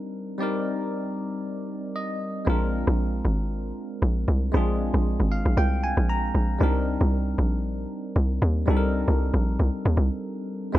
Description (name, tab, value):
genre	amapiano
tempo	116 BPM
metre	4/4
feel	swing 55% on 16ths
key	C minor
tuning	A4 = 439 Hz
part	bell-like tine electric piano	accompaniment	0.0-10.8 s	G3 to Bb5	-28 LUFS	equal	phaser
part	hollow log drum bass	bass	2.5-10.8 s	Ab1 to Eb2	-22 LUFS	equal	none
room	little or no reverb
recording	none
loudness	-23 LUFS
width	side -14 dB against mid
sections	0.0-10.7 A section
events	tine electric piano fill 1.7-2.5, 5.1-6.6; break 10.2-10.7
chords	0.0 Cm9; 2.5 Bb7; 6.6 Cm9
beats	| 0.40 0.92 1.44 1.95 | 2.47 2.99 3.50 4.02 | 4.54 5.06 5.57 6.09 | 6.61 7.12 7.64 8.16 | 8.68 9.19 9.71 10.23 | 10.75